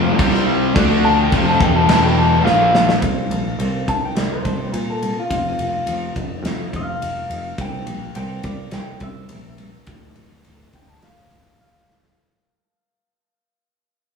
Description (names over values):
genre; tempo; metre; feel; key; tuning
quiet-loud alternative rock; 105 BPM; 4/4; straight; unclear; A4 = 440 Hz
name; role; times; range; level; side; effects
clean electric guitar; melody; 0.0-12.2 s; F4 to A5; -22 LUFS; left 2 dB; tape echo
mellow tonewheel organ; sustained chords; 0.0-3.0 s; E3 to G5; -29 LUFS; left 2 dB; none
distorted electric guitar; riff; 0.0-3.0 s; E2 to D4; -21 LUFS; right 5 dB; distortion
distorted electric guitar; riff; 0.0-3.0 s; E2 to D4; -23 LUFS; right 2 dB; distortion
sludgy distorted guitar; riff; 0.0-3.0 s; E2 to D4; -21 LUFS; left 7 dB; overdrive
picked electric bass; bass; 0.0-12.1 s; D1 to Bb2; -24 LUFS; equal; none
big rock drum kit; drums; 0.2-12.2 s; crash cymbal, kick drum, ride cymbal, snare drum; -22 LUFS; left 1 dB; none
twelve-string electric guitar; arpeggios; 3.0-12.1 s; D2 to C4; -29 LUFS; right 1 dB; none
room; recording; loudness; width
moderate studio reverb, RT60 0.7 s; band playing live in one room, studio ambience; -16 LUFS; side -5 dB against mid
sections
0.0-3.0 A section; 3.0-12.2 B section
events
clean electric guitar solo 0.0-3.0, 3.0-12.2; drum fill 2.4-3.0, 11.6-12.2; fade-out 3.0-12.2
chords
0.2 C5; 0.7 Dm; 1.9 E5; 2.4 Bb5; 3.0 C5; 5.3 F5; 7.6 C; 9.9 Dm